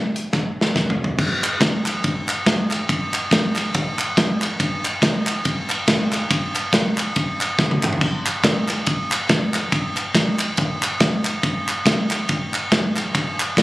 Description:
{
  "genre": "gospel",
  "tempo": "140 BPM",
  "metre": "4/4",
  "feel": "swing 59% on 8ths",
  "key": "none",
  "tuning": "none",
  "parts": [
    { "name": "modern studio drum kit", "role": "drums", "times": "0.2-13.6 s", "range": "crash cymbal, hi-hat, kick drum, ride cymbal, snare drum, splash cymbal, toms", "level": "-18 LUFS", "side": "equal", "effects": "none" },
    { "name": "group handclap", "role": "percussion", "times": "1.4-13.5 s", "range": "none", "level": "-26 LUFS", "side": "equal", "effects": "none" }
  ],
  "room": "moderate echo chamber reverb, RT60 1.6 s",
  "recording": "recorded on a phone in the room, club reverb",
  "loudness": "-18 LUFS",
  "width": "side -18 dB against mid",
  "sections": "0.0-1.2 A section; 1.2-13.6 B section",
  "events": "drum fill 0.3-1.2, 7.6-8.0",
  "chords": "none",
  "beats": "0.33 0.76 | 1.19 1.61 2.04 2.47 | 2.89 3.32 3.75 4.17 | 4.60 5.03 5.45 5.88 | 6.31 6.73 7.16 7.59 | 8.02 8.44 8.87 9.30 | 9.72 10.15 10.58 11.01 | 11.44 11.86 12.29 12.72 | 13.15 13.57"
}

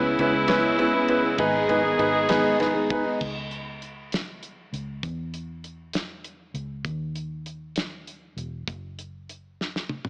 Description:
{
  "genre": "six-eight pop ballad",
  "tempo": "66 BPM (dotted quarters)",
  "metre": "6/8",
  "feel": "straight",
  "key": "unclear",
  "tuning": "A4 = 440 Hz",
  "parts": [
    { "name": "warm upright piano", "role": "accompaniment", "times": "0.0-3.2 s", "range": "C#4 to B4", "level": "-22 LUFS", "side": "equal", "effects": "none" },
    { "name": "rich studio string section", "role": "sustained chords", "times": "0.0-3.2 s", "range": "C#3 to G#4", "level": "-25 LUFS", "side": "equal", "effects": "none" },
    { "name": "fingerpicked plugged-in steel-string acoustic guitar", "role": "arpeggios", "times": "0.0-3.2 s", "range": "G#2 to B4", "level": "-27 LUFS", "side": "left 1 dB", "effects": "none" },
    { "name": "vintage muted fingered electric bass", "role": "bass", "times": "0.0-10.1 s", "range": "E1 to E2", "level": "-36 LUFS", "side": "equal", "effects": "none" },
    { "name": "damped 70s drum kit", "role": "drums", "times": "0.2-10.1 s", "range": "crash cymbal, hi-hat, kick drum, ride cymbal, snare drum, toms", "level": "-32 LUFS", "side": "equal", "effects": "none" }
  ],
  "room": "moderate scoring stage reverb, RT60 1.8 s, studio reverb",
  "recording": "AM radio sound",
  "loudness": "-22 LUFS",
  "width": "side -29 dB against mid",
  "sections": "0.0-3.2 A section; 3.2-10.1 B section",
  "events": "drum fill 9.6-10.1",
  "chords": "0.0 C#m7; 1.4 G#m; 3.2 N.C.; 5.0 C#m; 6.8 N.C.",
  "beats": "0.49 | 1.39 2.30 | 3.21 4.13 | 5.03 5.94 | 6.85 7.76 | 8.67 9.59"
}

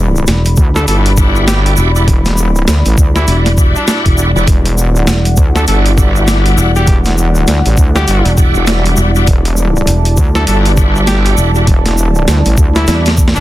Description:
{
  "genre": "glitch hop",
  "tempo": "100 BPM",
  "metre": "4/4",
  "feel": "swing 60% on 16ths",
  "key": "E minor",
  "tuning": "A4 = 438 Hz",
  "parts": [
    { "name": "dark analog pad", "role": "sustained chords", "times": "0.0-13.4 s", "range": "G3 to B5", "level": "-19 LUFS", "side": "right 1 dB", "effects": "chorus, sidechain pumping" },
    { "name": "wobble bass", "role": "bass", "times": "0.0-12.9 s", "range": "E1 to D2", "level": "-12 LUFS", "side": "equal", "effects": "chorus, tube saturation" },
    { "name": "egg shaker", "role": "percussion", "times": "0.2-13.4 s", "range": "none", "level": "-24 LUFS", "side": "left 2 dB", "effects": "none" },
    { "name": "fingered electric bass", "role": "bass", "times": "0.3-13.4 s", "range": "E1 to E2", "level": "-12 LUFS", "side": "equal", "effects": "tube saturation" },
    { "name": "boom bap sampler-style drum kit", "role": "drums", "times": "0.3-13.4 s", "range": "hi-hat, snare drum", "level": "-16 LUFS", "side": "equal", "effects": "none" },
    { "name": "electronic kick drum", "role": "drums", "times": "0.6-13.3 s", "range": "none", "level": "-11 LUFS", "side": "equal", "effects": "none" },
    { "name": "warm trumpet", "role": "melody", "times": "0.8-13.4 s", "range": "D4 to A4", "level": "-23 LUFS", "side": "equal", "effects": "vintage 12-bit sampler grit, dub echo" },
    { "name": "bright tonewheel organ", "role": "stabs", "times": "0.8-13.4 s", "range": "G3 to F#4", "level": "-19 LUFS", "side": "equal", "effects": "chorus vibrato, slow rotary speaker, sidechain pumping, dub echo" }
  ],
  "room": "little or no reverb",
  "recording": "dense, heavily limited modern master",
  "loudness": "-8 LUFS",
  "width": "side -15 dB against mid",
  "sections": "0.0-13.4 A section",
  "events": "drum fill 12.9-13.4",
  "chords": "0.0 Em9",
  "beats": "0.28 0.88 1.48 | 2.08 2.68 3.28 3.88 | 4.48 5.08 5.68 6.28 | 6.88 7.48 8.08 8.68 | 9.28 9.88 10.48 11.08 | 11.68 12.28 12.88"
}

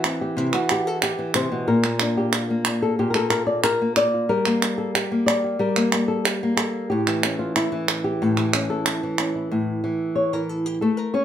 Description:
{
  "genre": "flamenco",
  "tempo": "184 BPM",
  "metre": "4/4",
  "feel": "straight",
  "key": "A phrygian dominant",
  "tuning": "A4 = 440 Hz",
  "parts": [
    { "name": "flamenco guitar", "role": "melody", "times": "0.0-11.2 s", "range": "A2 to D5", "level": "-21 LUFS", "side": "left 1 dB", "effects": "slapback echo" },
    { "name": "palmas hand claps", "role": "percussion", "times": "0.0-9.3 s", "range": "none", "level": "-23 LUFS", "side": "right 4 dB", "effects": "none" }
  ],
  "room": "moderate studio reverb, RT60 0.6 s",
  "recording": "none",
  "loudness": "-20 LUFS",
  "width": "side -10 dB against mid",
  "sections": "0.0-9.5 A section; 9.5-11.2 B section",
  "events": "nylon-string guitar solo 9.5-11.2",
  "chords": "0.0 C; 1.7 Bb; 4.3 Gm; 6.9 A",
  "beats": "0.04 | 0.37 0.69 1.02 1.35 | 1.68 2.00 2.33 2.66 | 2.98 3.31 3.64 3.97 | 4.29 4.62 4.95 5.27 | 5.60 5.92 6.25 6.58 | 6.90 7.23 7.55 7.88 | 8.21 8.53 8.86 9.18 | 9.51 9.83 10.16 10.48 | 10.81 11.14"
}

